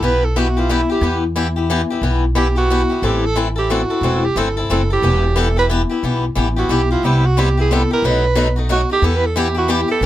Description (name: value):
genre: acoustic string swing (jazz manouche)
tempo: 180 BPM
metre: 3/4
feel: swing 60% on 8ths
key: E minor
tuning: A4 = 440 Hz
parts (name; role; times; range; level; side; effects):
- warm alto saxophone; melody; 0.0-10.1 s; E4 to B4; -19 LUFS; right 4 dB; none
- picked swing-style acoustic guitar; accompaniment; 0.0-10.1 s; B2 to A4; -19 LUFS; left 4 dB; none
- upright bass; bass; 0.0-10.1 s; E1 to E2; -18 LUFS; equal; none
room: light reverb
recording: close, detailed microphones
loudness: -14 LUFS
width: side -13 dB against mid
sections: 0.0-10.1 A section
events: alto saxophone solo 0.0-10.1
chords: 0.0 Em; 3.0 Am; 5.0 Em; 7.0 Cmaj7; 8.0 B7; 9.0 Em